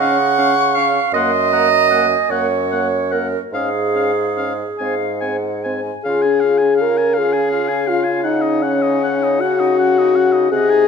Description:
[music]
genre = classical, slow romantic movement for wind quintet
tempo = 46-56 BPM (dotted quarters)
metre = 6/8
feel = rubato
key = Db major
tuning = A4 = 442 Hz
[part]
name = concert flute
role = melody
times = 0.0-10.9 s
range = Eb5 to Db6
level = -25 LUFS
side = left 12 dB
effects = none
[part]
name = clear oboe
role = second line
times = 0.0-10.9 s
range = Eb5 to Ab5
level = -25 LUFS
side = left 5 dB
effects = none
[part]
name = warm French horn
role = accompaniment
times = 0.0-10.9 s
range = Bb3 to Bb4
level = -17 LUFS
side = left 4 dB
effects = none
[part]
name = warm clarinet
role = accompaniment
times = 0.0-10.9 s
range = C4 to Gb5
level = -19 LUFS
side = right 8 dB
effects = none
[part]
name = warm bassoon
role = bass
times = 0.0-10.9 s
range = Gb2 to Db3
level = -22 LUFS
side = right 2 dB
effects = none
[sound]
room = wet recital hall reverb, RT60 1.5 s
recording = none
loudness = -14 LUFS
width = side -6 dB against mid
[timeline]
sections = 0.0-6.0 A section; 6.0-10.9 B section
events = none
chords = 0.0 Db; 1.1 Gb; 3.5 Db/Ab; 4.8 Ab; 6.0 Db; 8.2 Ebm7/Db

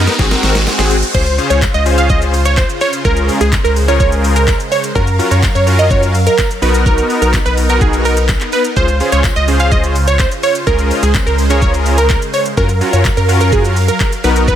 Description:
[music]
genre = dance-pop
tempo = 126 BPM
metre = 4/4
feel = straight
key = Db major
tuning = A4 = 440 Hz
[part]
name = big bright polysynth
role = accompaniment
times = 0.0-14.6 s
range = Cb4 to C5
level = -18 LUFS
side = left 2 dB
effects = chorus, sidechain pumping
[part]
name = supersaw chords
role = sustained chords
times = 0.0-14.6 s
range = Db3 to F5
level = -20 LUFS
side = equal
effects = phaser, sidechain pumping
[part]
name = round analog bass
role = bass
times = 0.0-14.6 s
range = Ab1 to Gb2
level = -14 LUFS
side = equal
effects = sidechain pumping
[part]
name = riser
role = sound effects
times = 0.0-1.1 s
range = none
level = -22 LUFS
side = right 1 dB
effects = none
[part]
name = smooth R&B drum kit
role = drums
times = 0.1-14.6 s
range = crash cymbal, handclaps, hi-hat, kick drum, shaker, snare drum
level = -17 LUFS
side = equal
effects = none
[part]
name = tambourine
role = percussion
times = 0.7-14.1 s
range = none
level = -32 LUFS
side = left 9 dB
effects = none
[part]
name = plucky unison lead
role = melody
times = 1.1-14.6 s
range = Ab4 to F5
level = -16 LUFS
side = right 2 dB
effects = phaser, tape echo
[sound]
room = little or no reverb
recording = none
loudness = -10 LUFS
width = side -10 dB against mid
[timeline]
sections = 0.0-1.1 A section; 1.1-14.6 B section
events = build-up 0.0-1.1; drum fill 0.0-1.1; riser 0.0-1.1; drop 1.1-14.6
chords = 0.2 Ab7; 1.1 Dbmaj7; 3.0 Bbm7/Db; 5.0 Gbmaj7; 6.6 Cbmaj7; 8.8 Dbmaj7; 10.7 Bbm7/Db; 12.6 Gbmaj7

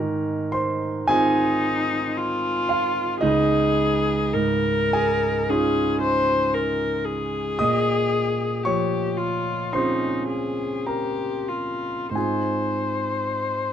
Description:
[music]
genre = classical, impressionist duo for viola and grand piano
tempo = 45-58 BPM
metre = 4/4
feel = rubato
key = Ab major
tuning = A4 = 441 Hz
[part]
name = warm concert grand piano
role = accompaniment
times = 0.0-13.7 s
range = Db2 to Eb6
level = -23 LUFS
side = right 2 dB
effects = none
[part]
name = rich viola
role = melody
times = 1.1-13.7 s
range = Eb4 to C5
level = -24 LUFS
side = left 4 dB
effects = none
[sound]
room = light reverb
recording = dark, warm production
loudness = -20 LUFS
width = side -9 dB against mid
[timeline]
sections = 0.0-13.7 A section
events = none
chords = 0.0 Ab6; 3.2 Dbadd9; 7.6 Bbm11; 12.1 Ab6

